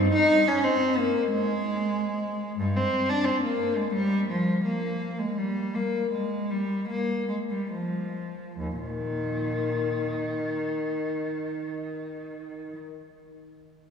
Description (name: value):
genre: classical, baroque-style suite movement for unaccompanied cello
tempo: 66-93 BPM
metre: 4/4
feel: rubato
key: Eb major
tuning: A4 = 440 Hz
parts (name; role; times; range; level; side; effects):
- warm cello; solo; 0.0-12.8 s; Eb2 to Eb4; -25 LUFS; left 1 dB; none
room: wet church reverb, RT60 3.8 s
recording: recorded in a church or concert hall, small room ambience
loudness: -25 LUFS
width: side -6 dB against mid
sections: 0.0-8.6 A section; 8.6-12.0 B section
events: slowing down 1.3-8.6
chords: none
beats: 0.64 1.29 1.94 | 2.60 3.27 3.94 4.63 | 5.36 6.11 6.87 7.70 | 8.58 9.43 10.28 11.14